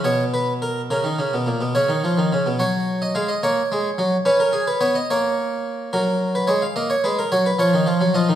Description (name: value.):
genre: classical, baroque-style two-part invention for harpsichord.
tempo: 72 BPM (dotted quarters).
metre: 6/8.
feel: straight.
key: F# major.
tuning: A4 = 440 Hz.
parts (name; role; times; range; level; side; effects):
harpsichord; solo; 0.0-8.4 s; A#2 to E#5; -18 LUFS; equal; none.
room: moderate recital hall reverb, RT60 1.6 s.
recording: minimal, uncompressed stereo recording.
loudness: -18 LUFS.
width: side -11 dB against mid.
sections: 0.0-2.6 A section; 2.6-5.9 B section; 5.9-8.4 A section.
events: none.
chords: 0.1 Bsus2; 0.9 A#madd11; 1.8 C#; 2.6 F#5; 3.4 F#; 4.3 C#5; 5.1 A#m; 5.9 F#; 6.8 Bmaj7; 7.6 D#m9.